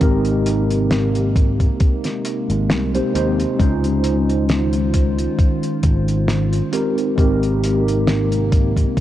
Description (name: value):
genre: vaporwave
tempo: 67 BPM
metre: 4/4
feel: swing 54% on 16ths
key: Ab major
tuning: A4 = 438 Hz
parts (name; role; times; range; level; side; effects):
- mellow tine electric piano; accompaniment; 0.0-9.0 s; Ab3 to C5; -20 LUFS; equal; medium stereo tremolo, lush chorus, tape echo
- warbly tape-like pad; sustained chords; 0.0-9.0 s; C3 to C5; -27 LUFS; right 2 dB; chorus, built-in reverb, vintage 12-bit sampler grit
- sustaining fretless electric bass; bass; 0.0-8.8 s; Ab1 to Eb2; -20 LUFS; equal; tube saturation
- cloth-damped thuddy drum kit; drums; 0.0-9.0 s; hi-hat, snare drum; -25 LUFS; equal; none
- electronic kick drum; drums; 0.0-9.0 s; none; -16 LUFS; equal; none
room: light reverb, small room ambience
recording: dark, warm production, cassette tape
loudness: -16 LUFS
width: side -13 dB against mid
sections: 0.0-9.0 A section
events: none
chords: 0.0 Abmaj9; 3.6 Dbmaj9; 6.7 Abmaj9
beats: | 0.01 0.91 1.81 2.70 | 3.60 4.49 5.39 6.28 | 7.18 8.07 8.97